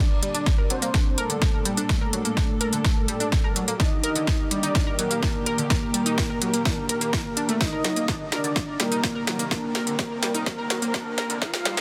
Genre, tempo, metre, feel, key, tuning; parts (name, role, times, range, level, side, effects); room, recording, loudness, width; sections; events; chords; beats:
melodic techno; 126 BPM; 4/4; straight; G minor; A4 = 441 Hz
soft octave-layered synth lead; melody; 0.0-11.8 s; A3 to F4; -32 LUFS; equal; chorus, phaser, sidechain pumping, delay
soft supersaw; second line; 0.0-11.8 s; A4 to F5; -34 LUFS; equal; cassette tape, sidechain pumping, low-pass filter, delay
dark studio string section; sustained chords; 0.0-11.8 s; Bb2 to C5; -38 LUFS; equal; sidechain pumping, low-pass filter
analog pluck; arpeggios; 0.2-11.8 s; D3 to Bb4; -32 LUFS; equal; chorus, sidechain pumping, delay
techno drum kit; drums; 0.2-11.8 s; hi-hat, snare drum; -30 LUFS; equal; overdrive, high-pass filter on snare, high-pass filter on hats
electronic kick drum; drums; 0.5-11.5 s; -26 LUFS; equal; overdrive
riser; sound effects; 11.2-11.8 s; -47 LUFS; equal
light reverb; dense, heavily limited modern master, high-pass filter; -24 LUFS; mono
0.0-11.8 A section
build-up 0.0-11.8; drum fill 0.0-11.8; filter sweep on soft synth lead 0.0-11.8; filter sweep on supersaw synth 0.0-11.8; filter sweep 0.0-11.8
0.0 Gmadd9; 3.8 Eb; 7.6 Cm7
0.46 0.94 1.42 | 1.89 2.37 2.85 3.32 | 3.80 4.27 4.75 5.23 | 5.70 6.18 6.66 7.13 | 7.61 8.08 8.56 9.04 | 9.51 9.99 10.46 10.94 | 11.42